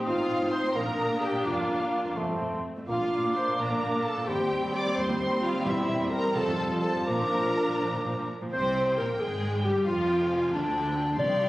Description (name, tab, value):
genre	classical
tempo	82-93 BPM (dotted quarters)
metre	6/8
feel	rubato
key	Bb major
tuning	A4 = 439 Hz
part	silver concert flute	second line	0.0-8.3 s	C6 to Eb6	-34 LUFS	right 1 dB	none
part	mellow bassoon	accompaniment	0.0-8.3 s	F3 to C4	-33 LUFS	right 1 dB	none
part	warm symphonic viola section	accompaniment	0.0-11.5 s	D3 to G4	-36 LUFS	right 1 dB	none
part	dark French horn section	sustained chords	0.0-8.3 s	F3 to Eb4	-34 LUFS	left 1 dB	none
part	warm symphonic violin section	melody	0.1-11.5 s	E5 to D6	-36 LUFS	left 1 dB	none
part	dark clarinet	second line	0.1-11.5 s	D4 to D5	-30 LUFS	equal	none
part	dark symphonic violin section	second line	0.1-11.5 s	D4 to C6	-35 LUFS	left 1 dB	none
part	rich symphonic double bass section	bass	0.1-11.5 s	E1 to Eb2	-37 LUFS	right 1 dB	none
part	warm symphonic cello section	bass	0.1-11.5 s	C2 to C3	-35 LUFS	right 1 dB	none
part	timpani	percussion	11.2-11.5 s	C3	-32 LUFS	equal	none
room	moderate recital hall reverb, RT60 1.5 s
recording	recorded on a phone in the room, studio reverb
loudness	-25 LUFS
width	side -17 dB against mid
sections	0.0-8.5 A section; 8.5-11.5 B section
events	none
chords	0.1 F7/A; 0.8 Bb; 1.4 Bb/F; 2.2 F; 2.9 Bb; 4.3 Cm/Eb; 5.6 C/E; 6.4 F; 7.1 Bb; 8.5 C5; 9.9 G5/F